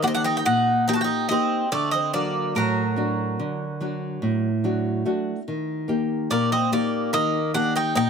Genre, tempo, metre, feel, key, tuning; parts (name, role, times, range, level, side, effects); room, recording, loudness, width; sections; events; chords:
greek folk, Greek bouzouki band; 144 BPM (eighths); 9/8; straight; D phrygian dominant; A4 = 440 Hz
Greek bouzouki; melody; 0.0-8.1 s; Bb4 to A5; -24 LUFS; right 2 dB
Greek bouzouki; second line; 0.0-8.1 s; F#3 to F#4; -28 LUFS; right 1 dB
nylon-string guitar; accompaniment; 0.0-8.1 s; A2 to G4; -24 LUFS; left 1 dB
little or no reverb; close, detailed microphones; -21 LUFS; side -6 dB against mid
0.0-8.1 A section
0.0 Eb; 1.7 D; 5.5 Eb